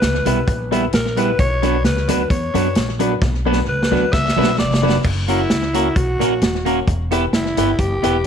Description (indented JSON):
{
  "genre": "ska",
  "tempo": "131 BPM",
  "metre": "4/4",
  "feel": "straight",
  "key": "B harmonic minor",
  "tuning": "A4 = 440 Hz",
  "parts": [
    { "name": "breathy alto saxophone", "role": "melody", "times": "0.0-8.3 s", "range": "E4 to E5", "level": "-22 LUFS", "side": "equal", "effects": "none" },
    { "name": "upright bass", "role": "bass", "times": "0.0-8.2 s", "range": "D#1 to F#2", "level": "-22 LUFS", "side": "equal", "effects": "none" },
    { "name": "vintage drum kit", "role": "drums", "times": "0.0-8.3 s", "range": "crash cymbal, hi-hat, kick drum, snare drum", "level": "-20 LUFS", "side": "equal", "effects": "slapback echo" },
    { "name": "clean electric guitar", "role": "accompaniment", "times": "0.3-8.2 s", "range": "F#3 to G4", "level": "-22 LUFS", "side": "right 11 dB", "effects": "vibrato effect" },
    { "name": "warm upright piano", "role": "stabs", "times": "0.3-8.1 s", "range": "A#3 to B4", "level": "-23 LUFS", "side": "left 12 dB", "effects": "none" }
  ],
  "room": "light reverb, small room reverb",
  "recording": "1960s-style stereo with parts hard left and right",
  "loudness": "-15 LUFS",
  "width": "side -8 dB against mid",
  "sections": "0.0-5.0 A section; 5.0-8.3 A section",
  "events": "alto saxophone solo 0.0-5.0, 5.0-8.3; drum fill 3.2-5.0",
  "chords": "0.0 Em; 1.4 Bm; 5.0 F#; 6.9 Em"
}